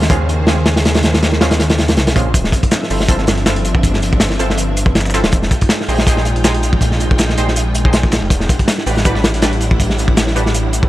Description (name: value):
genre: drum and bass, jungle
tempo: 161 BPM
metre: 4/4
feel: swing 54% on 16ths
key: unclear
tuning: A4 = 440 Hz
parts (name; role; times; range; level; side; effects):
- soft string machine; sustained chords; 0.0-10.9 s; Db3 to G5; -22 LUFS; equal; ensemble chorus
- orchestra-hit-like synth stab; stabs; 0.0-10.4 s; Ab3 to C5; -23 LUFS; right 1 dB; built-in reverb, dub echo
- detuned saw bass; bass; 0.0-10.9 s; D1 to Eb2; -17 LUFS; equal; none
- crunchy breakbeat drum kit; drums; 0.0-10.9 s; hi-hat, kick drum, snare drum; -14 LUFS; equal; none
- dusty soul sampler-style drum kit; drums; 2.3-10.8 s; hi-hat, shaker, snare drum; -25 LUFS; equal; high-pass filter on perc, high-pass filter on snare, high-pass filter on hats
room: small room ambience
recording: dry, gritty hardware recording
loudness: -12 LUFS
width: side -16 dB against mid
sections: 0.0-10.9 A section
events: none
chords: 0.0 Bbm9; 2.3 Dm9; 5.3 Fm9; 8.3 Em9